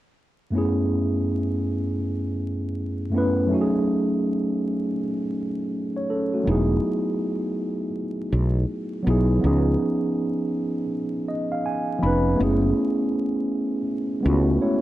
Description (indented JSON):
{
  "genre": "hip hop",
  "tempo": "81 BPM",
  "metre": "4/4",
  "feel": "swing 64% on 16ths",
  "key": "F# dorian",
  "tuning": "A4 = 440 Hz",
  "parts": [
    { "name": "mellow tine electric piano", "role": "accompaniment", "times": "0.5-14.8 s", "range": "F#2 to B5", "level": "-22 LUFS", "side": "equal", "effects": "medium stereo tremolo, low-pass filter" },
    { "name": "woody fretless electric bass", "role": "bass", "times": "6.5-14.6 s", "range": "E1 to C#2", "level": "-21 LUFS", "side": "equal", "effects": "none" }
  ],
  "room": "moderate small room reverb, RT60 0.6 s",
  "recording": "dark, warm production, vinyl crackle",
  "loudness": "-21 LUFS",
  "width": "side -15 dB against mid",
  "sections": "0.5-12.4 A section; 12.4-14.8 B section",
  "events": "tine electric piano fill 10.9-12.4",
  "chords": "0.5 F#m11; 3.5 F#m69; 6.5 Emaj9; 9.4 C#7; 12.4 F#m11"
}